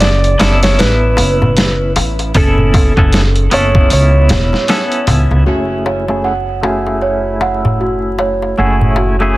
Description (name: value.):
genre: trip hop.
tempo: 77 BPM.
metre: 4/4.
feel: swing 60% on 16ths.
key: F# minor.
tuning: A4 = 440 Hz.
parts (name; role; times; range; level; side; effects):
clean lap steel guitar; melody; 0.0-5.0 s; A4 to D5; -17 LUFS; right 1 dB; tape echo.
semi-hollow electric guitar; accompaniment; 0.0-9.4 s; A3 to A4; -17 LUFS; equal; tremolo, low-pass filter, tape echo.
upright bass; bass; 0.0-9.4 s; E1 to C#2; -14 LUFS; equal; none.
dusty soul sampler-style drum kit; drums; 0.0-5.3 s; hi-hat, kick drum, snare drum; -14 LUFS; equal; none.
darbuka; percussion; 0.0-9.3 s; none; -19 LUFS; left 1 dB; none.
celesta; arpeggios; 5.5-9.4 s; F#4 to F#5; -17 LUFS; right 3 dB; low-pass filter, tape echo.
room: studio reverb.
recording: dense, heavily limited modern master, vinyl crackle.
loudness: -10 LUFS.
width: side -18 dB against mid.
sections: 0.0-5.5 A section; 5.5-9.4 B section.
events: filter sweep on clean electric guitar 5.5-9.4.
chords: 0.0 Aadd9/F#; 5.5 F#m9.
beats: 0.01 0.79 1.57 | 2.35 3.13 3.91 4.68 | 5.46 6.24 7.02 7.80 | 8.58 9.36.